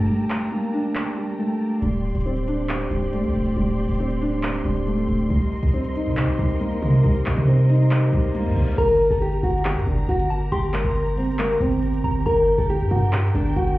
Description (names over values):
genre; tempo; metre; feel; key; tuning
hip hop, trap; 138 BPM; 4/4; half-time; G minor; A4 = 439 Hz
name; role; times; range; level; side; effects
felt-muted upright piano; accompaniment; 0.0-8.8 s; G3 to G4; -24 LUFS; equal; none
clear symphonic string section; sustained chords; 0.0-13.8 s; G4 to C6; -35 LUFS; equal; none
hard-hitting 808-style bass; bass; 0.0-13.8 s; C1 to C3; -21 LUFS; equal; none
trap drum kit; drums; 0.3-13.8 s; crash cymbal, handclaps, hi-hat; -30 LUFS; equal; overdrive
reverse cymbal; sound effects; 8.2-8.8 s; none; -40 LUFS; left 1 dB; none
nylon-string guitar; melody; 8.8-13.8 s; Bb3 to Bb4; -22 LUFS; equal; none
soft synth bell; second line; 8.8-13.7 s; A5 to C6; -33 LUFS; right 2 dB; chorus, phaser, digital delay
room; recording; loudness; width
light reverb; heard muffled through a wall, club reverb, EQ; -19 LUFS; side -17 dB against mid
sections
0.0-8.8 A section; 8.8-13.8 B section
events
break 0.0-1.8; reverse cymbal 8.2-8.8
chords
0.0 Gmadd9; 1.8 D7sus4; 5.3 Cm7; 8.8 Gm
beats
| 0.08 0.52 0.95 1.39 | 1.82 2.26 2.69 3.13 | 3.56 4.00 4.43 4.87 | 5.30 5.74 6.17 6.61 | 7.04 7.48 7.91 8.35 | 8.78 9.21 9.65 10.08 | 10.52 10.95 11.39 11.82 | 12.26 12.69 13.13 13.56